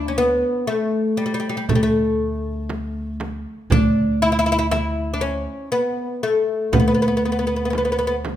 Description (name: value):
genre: Arabic maqam ensemble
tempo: 119 BPM (eighths)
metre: 10/8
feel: straight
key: unclear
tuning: A4 = 438 Hz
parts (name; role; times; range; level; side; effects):
- oud; melody; 0.0-8.1 s; G3 to E4; -21 LUFS; left 2 dB; none
- upright bass; bass; 0.0-8.4 s; D2; -22 LUFS; right 1 dB; none
- darbuka; percussion; 0.7-8.4 s; none; -24 LUFS; right 3 dB; none
- frame drum; percussion; 1.7-8.4 s; none; -25 LUFS; right 3 dB; none
room: light reverb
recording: minimal, uncompressed stereo recording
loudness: -18 LUFS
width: side -11 dB against mid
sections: 0.0-8.4 A section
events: none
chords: none